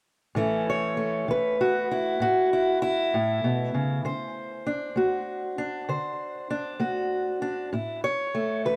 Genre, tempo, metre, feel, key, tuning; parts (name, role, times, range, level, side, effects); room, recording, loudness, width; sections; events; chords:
acoustic country blues, solo or duo; 65 BPM (dotted quarters); 12/8; straight; A4 = 441 Hz
fingerpicked steel-string acoustic guitar; solo; 0.3-8.8 s; A2 to C#5; -27 LUFS; equal; tape echo
wet booth ambience, RT60 0.3 s; heard from further back in the room; -27 LUFS; mono
0.4-8.8 A section
0.4 A; 4.0 D7; 7.7 A